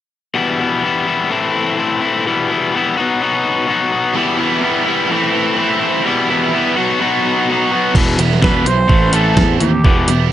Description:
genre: indie rock.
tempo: 126 BPM.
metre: 4/4.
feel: straight.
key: E harmonic minor.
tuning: A4 = 440 Hz.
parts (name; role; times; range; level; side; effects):
overdriven electric guitar; riff; 0.3-10.3 s; E2 to F#4; -15 LUFS; left 3 dB; none.
high-gain distorted guitar; riff; 4.1-10.3 s; E3 to E4; -20 LUFS; right 12 dB; distortion, analog chorus.
fuzz picked electric bass; bass; 7.9-10.3 s; E1 to E2; -16 LUFS; right 1 dB; overdrive.
detuned 8-bit digital drum machine; drums; 8.0-10.2 s; crash cymbal, hi-hat, kick drum, snare drum; -14 LUFS; right 1 dB; none.
clear trumpet; melody; 8.4-10.3 s; G4 to C5; -18 LUFS; right 3 dB; plate reverb.
room: moderate studio reverb, RT60 0.5 s.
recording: nothing above 10.8 kHz.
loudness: -13 LUFS.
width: side -12 dB against mid.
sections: 0.3-7.9 A section; 7.9-10.3 B section.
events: none.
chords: 0.3 Em; 1.3 Am; 2.2 Em; 3.0 B; 4.1 Em; 5.1 Am; 6.0 Em; 6.8 B; 7.9 Em; 8.9 Am.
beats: | 0.35 0.82 1.30 1.77 | 2.25 2.72 3.20 3.67 | 4.15 4.62 5.10 5.57 | 6.05 6.52 7.00 7.47 | 7.95 8.42 8.90 9.37 | 9.85 10.32.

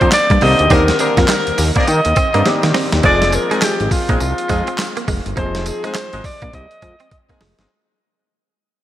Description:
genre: R&B, new jack swing.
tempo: 103 BPM.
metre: 4/4.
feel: swing 61% on 16ths.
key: F dorian.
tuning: A4 = 445 Hz.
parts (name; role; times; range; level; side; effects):
breathy alto saxophone; melody; 0.0-7.4 s; F4 to Eb5; -18 LUFS; equal; none.
bright grand piano; accompaniment; 0.0-7.7 s; D3 to Ab4; -23 LUFS; left 2 dB; slapback echo.
direct-recorded clean electric guitar; riff; 0.0-7.5 s; G3 to C4; -24 LUFS; right 5 dB; analog chorus.
warm horn section; stabs; 0.0-7.7 s; Ab3 to Bb4; -23 LUFS; left 2 dB; slapback echo.
fat analog bass; bass; 0.0-7.7 s; F1 to Eb3; -18 LUFS; equal; none.
boom bap sampler-style drum kit; drums; 0.0-7.7 s; handclaps, hi-hat, kick drum, snare drum, tambourine; -19 LUFS; equal; none.
room: moderate lush hall reverb, RT60 2.7 s.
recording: big arena sound.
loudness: -13 LUFS.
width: side -13 dB against mid.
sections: 0.0-3.0 A section; 3.0-7.7 B section.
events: drum fill 2.5-3.0, 6.5-7.7; fade-out 3.0-7.7.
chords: 0.0 Cm9; 3.0 Fm7.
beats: 0.13 | 0.71 1.29 1.88 2.46 | 3.04 3.62 4.21 4.79 | 5.37 5.95 6.54 7.12.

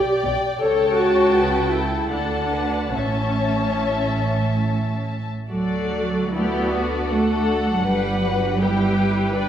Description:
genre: classical, slow romantic movement for string orchestra.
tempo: 67-84 BPM.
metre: 3/4.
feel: rubato.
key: D major.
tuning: A4 = 439 Hz.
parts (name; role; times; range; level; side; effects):
muted studio violin section; melody; 0.0-9.5 s; F#4 to D5; -27 LUFS; left 4 dB; none.
muted studio violin section; second line; 0.0-9.5 s; G4 to A5; -27 LUFS; left 2 dB; none.
muted studio viola section; accompaniment; 0.0-9.5 s; C#4 to B4; -24 LUFS; equal; none.
muted studio cello section; bass; 0.2-9.5 s; A2 to B3; -24 LUFS; right 2 dB; none.
muted studio double bass section; bass; 0.2-9.5 s; G1 to D2; -26 LUFS; right 3 dB; none.
room: wet recital hall reverb, RT60 1.4 s.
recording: recorded in a church or concert hall.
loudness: -18 LUFS.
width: side -10 dB against mid.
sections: 0.0-5.5 A section; 5.5-9.5 B section.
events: none.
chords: 0.0 G; 0.6 A7/C#; 2.1 D; 2.9 A; 5.5 D; 7.9 Gmaj7.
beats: | 0.60 1.34 2.12 | 2.94 3.80 4.64 | 5.50 6.36 7.14 | 7.88 8.61 9.35.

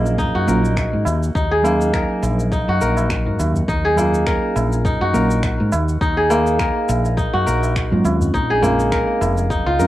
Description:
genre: organic downtempo.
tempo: 103 BPM.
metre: 4/4.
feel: swing 55% on 16ths.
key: Eb dorian.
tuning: A4 = 442 Hz.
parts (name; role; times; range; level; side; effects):
muted felt-like synth keys; accompaniment; 0.0-9.9 s; Gb3 to F5; -23 LUFS; right 2 dB; chorus, sidechain pumping, cassette tape, tape echo.
kora; arpeggios; 0.0-9.9 s; Bb3 to Bb4; -19 LUFS; equal; cassette tape, tape echo.
woody fretless electric bass; bass; 0.0-9.9 s; F1 to Ab2; -20 LUFS; equal; lush chorus, sidechain pumping.
bronze singing bowl; texture; 0.0-9.9 s; Eb5; -34 LUFS; right 1 dB; none.
electronic cabasa and finger snaps; drums; 0.1-9.9 s; none; -30 LUFS; equal; cassette tape.
tabla; percussion; 0.1-9.9 s; none; -28 LUFS; right 2 dB; none.
electronic kick drum; drums; 0.2-9.6 s; none; -24 LUFS; equal; cassette tape.
room: light reverb.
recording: home recording on cassette.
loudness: -16 LUFS.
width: side -14 dB against mid.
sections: 0.0-9.9 A section.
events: none.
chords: 0.0 Ebm7; 8.3 Bbm7.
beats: 0.19 0.77 | 1.35 1.93 2.52 3.10 | 3.68 4.26 4.85 5.43 | 6.01 6.59 7.18 7.76 | 8.34 8.93 9.51.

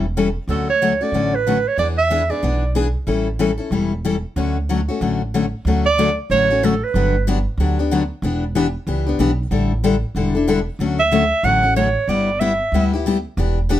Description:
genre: acoustic string swing (jazz manouche).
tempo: 186 BPM.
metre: 4/4.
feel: swing 60% on 8ths.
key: D major.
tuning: A4 = 440 Hz.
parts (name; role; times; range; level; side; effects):
picked steel-string acoustic guitar; accompaniment; 0.0-13.8 s; D3 to A4; -19 LUFS; left 4 dB; none.
upright bass; bass; 0.0-13.8 s; E1 to E2; -22 LUFS; right 1 dB; none.
clear clarinet; melody; 0.5-2.8, 5.9-7.3, 11.0-12.9 s; A4 to F#5; -18 LUFS; right 4 dB; plate reverb.
room: light reverb.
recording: none.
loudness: -16 LUFS.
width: side -12 dB against mid.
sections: 0.0-5.7 A section; 5.7-13.8 B section.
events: none.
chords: 0.5 Dmaj7; 1.8 E7; 3.1 A7; 4.4 Dmaj7; 6.9 Gmaj7; 8.2 Em7; 9.5 A7sus4; 10.8 Dmaj7; 12.1 G6.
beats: 0.16 | 0.49 0.81 1.13 1.46 | 1.78 2.10 2.42 2.75 | 3.07 3.39 3.71 4.04 | 4.36 4.68 5.00 5.33 | 5.65 5.97 6.29 6.62 | 6.94 7.26 7.58 7.91 | 8.23 8.55 8.87 9.19 | 9.52 9.84 10.16 10.48 | 10.80 11.12 11.45 11.77 | 12.09 12.41 12.73 13.05 | 13.38 13.70.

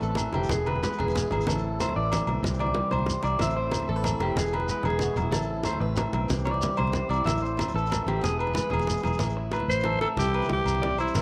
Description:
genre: highlife guitar band.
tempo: 124 BPM (dotted quarters).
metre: 12/8.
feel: straight.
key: A minor.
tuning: A4 = 440 Hz.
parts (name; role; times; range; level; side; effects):
picked steel-string acoustic guitar; accompaniment; 0.0-11.2 s; A2 to C5; -36 LUFS; equal; none.
tonewheel organ; sustained chords; 0.0-9.2 s; B3 to A4; -41 LUFS; equal; overdrive, fast rotary speaker.
electric guitar at the edge of break-up; arpeggios; 0.0-11.2 s; G4 to E5; -32 LUFS; equal; tape echo.
fingered electric bass; bass; 0.0-11.2 s; E1 to C2; -32 LUFS; equal; none.
shekere; percussion; 0.0-11.2 s; none; -37 LUFS; equal; none.
agogo bells; percussion; 0.2-11.2 s; none; -38 LUFS; equal; none.
congas; percussion; 0.2-11.2 s; none; -35 LUFS; equal; none.
raspy alto saxophone; melody; 9.7-11.2 s; E4 to C5; -29 LUFS; equal; none.
room: moderate plate reverb, RT60 2.6 s.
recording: none.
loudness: -27 LUFS.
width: mono.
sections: 0.0-9.2 A section; 9.2-11.2 B section.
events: none.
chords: 0.0 Am; 0.5 E; 1.5 Am; 2.4 C; 3.4 Am; 4.4 E; 5.3 Am; 6.3 C; 7.3 Am; 8.2 E; 9.2 Am; 10.2 C.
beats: 0.02 0.50 0.99 | 1.47 1.95 2.44 2.92 | 3.40 3.88 4.37 4.85 | 5.33 5.82 6.30 6.78 | 7.26 7.75 8.23 8.72 | 9.20 9.69 10.17 10.66 | 11.15.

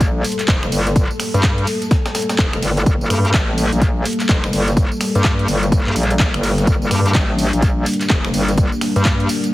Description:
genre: bass house.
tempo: 126 BPM.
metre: 4/4.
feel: swing 62% on 16ths.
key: G minor.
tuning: A4 = 440 Hz.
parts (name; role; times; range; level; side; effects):
dark analog pad; sustained chords; 0.0-9.5 s; G3 to A4; -22 LUFS; left 1 dB; chorus, vintage 12-bit sampler grit, sidechain pumping.
metallic wobble bass; bass; 0.0-9.3 s; F1 to G2; -18 LUFS; equal; chorus, tube saturation, sidechain pumping.
breakbeat sampler-style drum kit; drums; 0.0-9.4 s; hi-hat, snare drum, tambourine; -30 LUFS; equal; none.
electronic kick drum; drums; 0.0-9.2 s; none; -16 LUFS; equal; overdrive.
garage drum kit; drums; 0.0-9.5 s; finger snaps, handclaps, hi-hat, tambourine; -24 LUFS; equal; overdrive.
impact; sound effects; 0.3-1.0 s; none; barely audible; none; none.
room: digital ambience.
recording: heavily compressed radio sound.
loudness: -14 LUFS.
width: side -16 dB against mid.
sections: 0.0-9.5 A section.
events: impact 0.0-1.0.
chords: 0.0 Gmadd9.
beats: 0.01 0.48 | 0.96 1.43 1.91 2.39 | 2.86 3.34 3.81 4.29 | 4.77 5.24 5.72 6.20 | 6.67 7.15 7.62 8.10 | 8.58 9.05 9.53.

